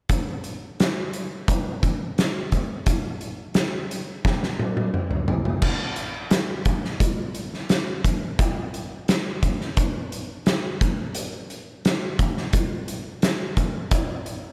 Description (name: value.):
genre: rock.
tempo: 87 BPM.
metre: 4/4.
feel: straight.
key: none.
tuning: none.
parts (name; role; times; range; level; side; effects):
oversized low-tuned drum kit; drums; 0.1-14.4 s; crash cymbal, hi-hat, kick drum, snare drum, toms; -25 LUFS; equal; none.
room: light reverb.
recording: none.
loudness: -25 LUFS.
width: mono.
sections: 0.1-5.6 A section; 5.6-14.5 B section.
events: drum fill 4.3-5.6.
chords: none.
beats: | 0.10 0.80 1.49 2.18 | 2.87 3.56 4.25 4.94 | 5.63 6.33 7.01 7.71 | 8.39 9.09 9.78 10.46 | 11.15 11.84 12.53 13.22 | 13.91.